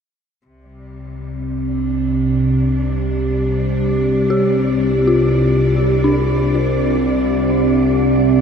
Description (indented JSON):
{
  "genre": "dark ambient drone",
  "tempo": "free time",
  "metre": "none",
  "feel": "none",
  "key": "unclear",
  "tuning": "A4 = 440 Hz",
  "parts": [
    { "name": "bright symphonic cello section", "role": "sustained chords", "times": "0.5-8.4 s", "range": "C3 to D5", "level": "-28 LUFS", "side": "right 1 dB", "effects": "none" },
    { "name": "overtone-sweeping drone", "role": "drone", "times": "1.0-8.4 s", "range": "C2 to C3", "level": "-15 LUFS", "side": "equal", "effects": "chorus, built-in reverb" },
    { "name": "flickering grainy texture", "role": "texture", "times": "0.8-8.4 s", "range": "D5", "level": "-36 LUFS", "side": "right 1 dB", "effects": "built-in reverb" },
    { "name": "dark detuned synth bell", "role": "arpeggios", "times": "4.3-8.4 s", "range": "D4 to G4", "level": "-20 LUFS", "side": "equal", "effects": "chorus, ping-pong delay" }
  ],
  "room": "wet cathedral reverb, RT60 6.1 s",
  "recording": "in a vast, echoing space",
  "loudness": "-14 LUFS",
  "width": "side -6 dB against mid",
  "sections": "0.5-8.4 A section",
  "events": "fade-in on cello section 0.5-8.4; fade-in on synth texture 0.5-8.4",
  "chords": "0.5 Csus2",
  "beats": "free time"
}